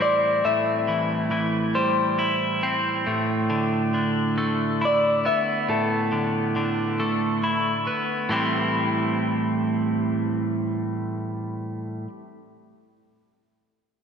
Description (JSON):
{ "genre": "rock", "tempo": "46 BPM (dotted quarters)", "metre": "6/8", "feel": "straight", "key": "A minor", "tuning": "A4 = 441 Hz", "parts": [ { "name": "electric guitar through a small old amp", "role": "melody", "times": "0.0-7.4 s", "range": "A4 to E5", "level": "-24 LUFS", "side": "left 2 dB", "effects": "slapback echo, analog delay" }, { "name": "twelve-string electric guitar", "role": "arpeggios", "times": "0.0-12.1 s", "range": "A2 to E4", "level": "-23 LUFS", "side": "right 1 dB", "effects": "spring reverb, analog delay" } ], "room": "wet lush hall reverb, RT60 2.4 s", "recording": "big arena sound", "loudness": "-21 LUFS", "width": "side -6 dB against mid", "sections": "0.0-8.3 A section; 8.3-10.9 B section", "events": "none", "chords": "0.0 Am7; 3.1 E7sus4/A; 8.3 Am7" }